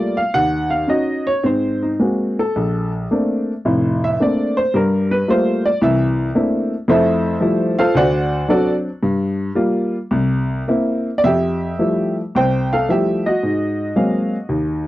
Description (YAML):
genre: solo jazz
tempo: 110 BPM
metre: 4/4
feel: swing 69% on 8ths, rubato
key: F major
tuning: A4 = 439 Hz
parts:
  - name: warm upright piano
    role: solo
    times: 0.0-14.9 s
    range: F1 to G5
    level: -16 LUFS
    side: equal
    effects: none
room: light reverb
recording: dry, close 1970s-style studio recording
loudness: -16 LUFS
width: side -16 dB against mid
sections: 0.0-11.2 A section; 11.2-14.9 B section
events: upright piano solo 0.0-11.2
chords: 0.3 Ebm7; 1.4 Ab9; 2.6 Bbmaj9; 4.8 Gm9; 5.8 C13; 6.9 Fmaj9; 7.9 D7; 9.0 Gm7; 10.1 C7; 11.2 Fmaj9; 13.4 Ab13